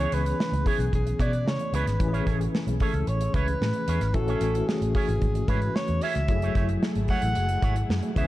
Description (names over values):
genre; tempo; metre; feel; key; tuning
polished 1980s jazz-funk pop; 112 BPM; 4/4; straight; unclear; A4 = 440 Hz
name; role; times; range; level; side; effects
breathy alto saxophone; melody; 0.0-8.3 s; G#4 to F#5; -31 LUFS; equal; none
overdriven tine electric piano; accompaniment; 0.0-8.3 s; E3 to G#4; -31 LUFS; left 3 dB; fast tremolo, analog chorus
electric guitar with an envelope filter; riff; 0.0-8.3 s; A3 to C#5; -36 LUFS; right 8 dB; analog chorus
vintage muted fingered electric bass; bass; 0.0-8.3 s; F#1 to C#3; -27 LUFS; equal; none
modern studio drum kit; drums; 0.1-8.3 s; hi-hat, kick drum, snare drum; -28 LUFS; equal; none
warm studio string section; sustained chords; 6.3-8.3 s; C#3 to G#4; -38 LUFS; equal; none
room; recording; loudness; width
light reverb, small room ambience; dark, warm production; -23 LUFS; side -16 dB against mid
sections
0.0-8.3 A section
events
none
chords
0.0 C#m7; 2.0 Amaj7; 6.3 F#m9